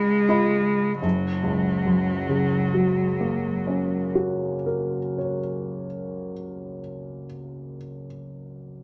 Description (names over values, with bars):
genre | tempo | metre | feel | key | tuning
classical, romantic duo for cello and grand piano | 43 BPM | 4/4 | rubato | F# major | A4 = 439 Hz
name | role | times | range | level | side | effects
clear cello | melody | 0.0-4.1 s | F#3 to G#3 | -27 LUFS | equal | none
warm concert grand piano | accompaniment | 0.0-8.8 s | F#1 to B5 | -27 LUFS | equal | none
room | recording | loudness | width
moderate stone room reverb, RT60 1.0 s | none | -24 LUFS | mono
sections
0.0-1.0 A section; 1.0-6.6 B section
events
slowing down 0.0-1.0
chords
0.0 C#9; 1.0 F#